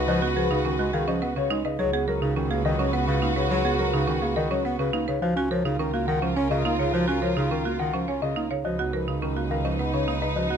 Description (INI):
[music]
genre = classical, minimalist pattern music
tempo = 105 BPM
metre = 3/4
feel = straight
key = unclear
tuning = A4 = 439 Hz
[part]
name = dark baby grand piano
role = melody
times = 0.0-10.5 s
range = Ab4 to Gb5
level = -31 LUFS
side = left 10 dB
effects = none
[part]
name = mellow soprano saxophone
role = second line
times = 0.0-10.6 s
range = Eb4 to Gb4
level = -34 LUFS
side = right 2 dB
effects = none
[part]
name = mellow bass clarinet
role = accompaniment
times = 0.0-10.6 s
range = Db3 to Db4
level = -28 LUFS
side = left 1 dB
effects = none
[part]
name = rich symphonic string section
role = sustained chords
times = 0.0-10.6 s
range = Eb4 to Cb5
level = -32 LUFS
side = left 3 dB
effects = none
[part]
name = buzzing marimba with hard mallets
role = arpeggios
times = 0.0-10.6 s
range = Db4 to Db5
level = -29 LUFS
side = right 8 dB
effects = none
[part]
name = rich double bass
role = bass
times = 0.0-10.6 s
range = Db2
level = -30 LUFS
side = right 2 dB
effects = none
[sound]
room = light reverb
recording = close, detailed microphones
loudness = -22 LUFS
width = side -7 dB against mid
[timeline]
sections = 0.0-10.6 A section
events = none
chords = 0.0 Db9sus4; 1.8 Abm9/Db; 5.2 Gbmaj7/Db; 8.7 Cbmaj9/Db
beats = | 0.08 0.65 1.22 | 1.79 2.36 2.94 | 3.51 4.08 4.65 | 5.22 5.79 6.36 | 6.94 7.51 8.08 | 8.65 9.22 9.79 | 10.36